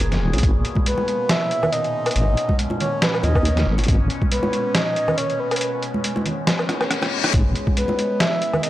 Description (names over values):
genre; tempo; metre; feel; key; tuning
deep dubstep; 139 BPM; 4/4; swing 55% on 16ths, half-time; G# minor; A4 = 440 Hz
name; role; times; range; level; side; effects
overtone-sweeping drone; sustained chords; 0.0-8.7 s; A#2 to G#4; -28 LUFS; left 1 dB; chorus, built-in reverb, phaser
deep soft wobble bass; bass; 0.0-4.1, 7.3-7.5 s; D#1 to D#2; -19 LUFS; equal; chorus
trip hop sampler-style drum kit; drums; 0.0-8.7 s; hi-hat, rim click, snare drum, woodblock; -23 LUFS; equal; overdrive, small room ambience
bongos and congas; percussion; 0.1-8.6 s; none; -28 LUFS; right 2 dB; none
electronic kick drum; drums; 0.4-4.3, 7.3-7.7 s; none; -21 LUFS; equal; overdrive, small room ambience
breathy flute-like synth lead; melody; 0.9-8.7 s; B4 to E5; -24 LUFS; equal; chorus, cassette tape, dub echo
reverse cymbal; sound effects; 6.7-7.3 s; none; -26 LUFS; left 7 dB; none
room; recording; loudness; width
digital ambience; dry, gritty hardware recording, cassette tape; -18 LUFS; side -14 dB against mid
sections
0.0-8.7 A section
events
drum fill 6.7-7.3; reverse cymbal 6.7-7.3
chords
0.0 G#madd9